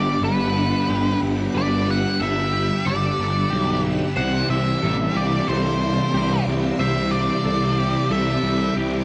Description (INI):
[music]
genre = rock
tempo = 91 BPM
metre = 4/4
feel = straight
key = G major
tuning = A4 = 440 Hz
[part]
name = octave-fuzz lead guitar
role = melody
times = 0.0-8.7 s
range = B4 to F#5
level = -28 LUFS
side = equal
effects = distortion, cassette tape, analog delay
[part]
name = string machine, full ensemble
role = sustained chords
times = 0.0-9.0 s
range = G4 to E6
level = -33 LUFS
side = equal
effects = ensemble chorus
[part]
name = twelve-string electric guitar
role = arpeggios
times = 0.0-9.0 s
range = G4 to C5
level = -35 LUFS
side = equal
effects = analog chorus, analog delay
[part]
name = raw garage guitar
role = riff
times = 0.0-9.0 s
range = C3 to G4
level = -28 LUFS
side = equal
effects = overdrive, reverse reverb
[part]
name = thick fuzz guitar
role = riff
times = 0.0-9.0 s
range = G2 to C4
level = -29 LUFS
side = equal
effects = distortion, ensemble chorus
[part]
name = fuzz picked electric bass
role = bass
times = 0.0-9.0 s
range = G1 to C2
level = -26 LUFS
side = equal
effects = overdrive
[sound]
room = moderate booth ambience, RT60 0.1 s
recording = home recording on cassette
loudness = -21 LUFS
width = mono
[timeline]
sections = 0.0-9.0 A section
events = none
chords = 0.0 Gmaj7; 4.2 Cadd9